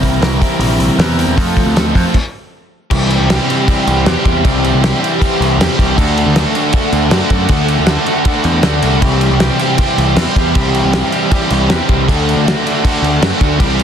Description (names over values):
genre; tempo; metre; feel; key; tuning
indie rock; 157 BPM; 4/4; straight; C lydian; A4 = 442 Hz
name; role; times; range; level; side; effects
crunchy overdriven guitar; riff; 0.0-13.8 s; C3 to Bb4; -15 LUFS; equal; none
growling picked electric bass; bass; 0.0-13.8 s; Bb1 to F#2; -16 LUFS; equal; overdrive
cloth-damped thuddy drum kit; drums; 0.0-13.8 s; crash cymbal, hi-hat, kick drum, snare drum; -15 LUFS; equal; none
string machine, violas; sustained chords; 2.9-13.8 s; G4 to D6; -24 LUFS; equal; ensemble chorus
room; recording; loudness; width
studio reverb; dense, heavily limited modern master; -11 LUFS; side -8 dB against mid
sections
0.0-2.9 A section; 2.9-13.8 B section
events
stop 2.1-2.9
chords
0.0 C7; 1.4 F; 2.1 N.C.; 2.9 C; 6.0 D; 9.0 C; 12.1 D